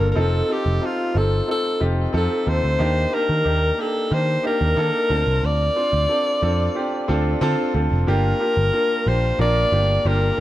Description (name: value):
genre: 1980s-style pop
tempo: 91 BPM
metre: 4/4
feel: straight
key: unclear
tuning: A4 = 440 Hz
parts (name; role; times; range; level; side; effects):
- bright alto saxophone; melody; 0.0-10.4 s; F4 to D5; -22 LUFS; left 1 dB; ping-pong delay
- clear baby grand piano; accompaniment; 0.0-10.4 s; Bb3 to A5; -24 LUFS; equal; none
- vintage muted picked electric bass; bass; 0.0-10.3 s; F1 to Eb3; -20 LUFS; equal; none
room: moderate recital hall reverb, RT60 1.5 s, small room reverb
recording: none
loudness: -18 LUFS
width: side -14 dB against mid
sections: 0.0-8.1 A section; 8.1-10.4 B section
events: none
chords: 0.2 F7; 2.8 Ebmaj7; 5.1 Dm7; 8.1 Gm7